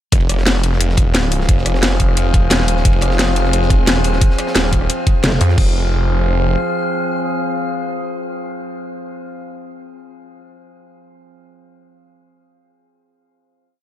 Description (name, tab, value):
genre	dark technical drum and bass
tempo	176 BPM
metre	4/4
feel	straight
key	F minor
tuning	A4 = 440 Hz
part	metallic inharmonic drone	sustained chords	0.7-8.8 s	F3 to F5	-22 LUFS	left 1 dB	chorus, built-in reverb, sidechain pumping
part	snarling distorted saw bass	bass	0.1-6.6 s	Eb1 to F2	-16 LUFS	equal	sidechain pumping
part	crunchy breakbeat drum kit	drums	0.1-5.6 s	ride cymbal, snare drum	-29 LUFS	equal	none
part	drum and bass drum kit	drums	0.1-5.6 s	crash cymbal, hi-hat, rim click, snare drum	-19 LUFS	left 1 dB	none
part	electronic kick drum	drums	0.1-5.6 s	none	-14 LUFS	equal	none
part	metallic wobble bass	bass	5.2-5.4 s	F1	-16 LUFS	equal	chorus
room	little or no reverb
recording	none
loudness	-13 LUFS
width	side -12 dB against mid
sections	0.1-5.6 drop; 5.6-8.3 final chord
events	drop 0.1-5.6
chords	0.1 Fm